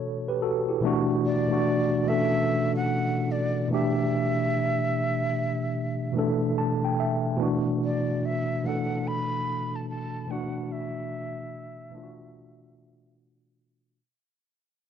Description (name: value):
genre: hip hop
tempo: 73 BPM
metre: 4/4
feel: swing 64% on 16ths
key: E minor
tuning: A4 = 440 Hz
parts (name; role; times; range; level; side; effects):
- mellow tine electric piano; accompaniment; 0.0-14.0 s; B2 to A5; -25 LUFS; equal; medium stereo tremolo, low-pass filter
- breathy jazz flute; melody; 1.3-13.2 s; D5 to B5; -31 LUFS; equal; low-pass filter
room: light reverb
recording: dry, gritty hardware recording, low-pass filter, nothing above 11.0 kHz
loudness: -24 LUFS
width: side -8 dB against mid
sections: 0.0-7.4 A section; 7.4-14.0 B section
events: fade-out 7.4-14.0; filter sweep 7.4-14.0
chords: 0.0 E5; 3.7 Em7; 7.4 Bm7; 10.3 E5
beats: 0.00 | 0.82 1.65 2.47 3.29 | 4.11 4.93 5.75 6.58 | 7.40 8.22 9.04 9.87 | 10.69 11.51 12.33 13.15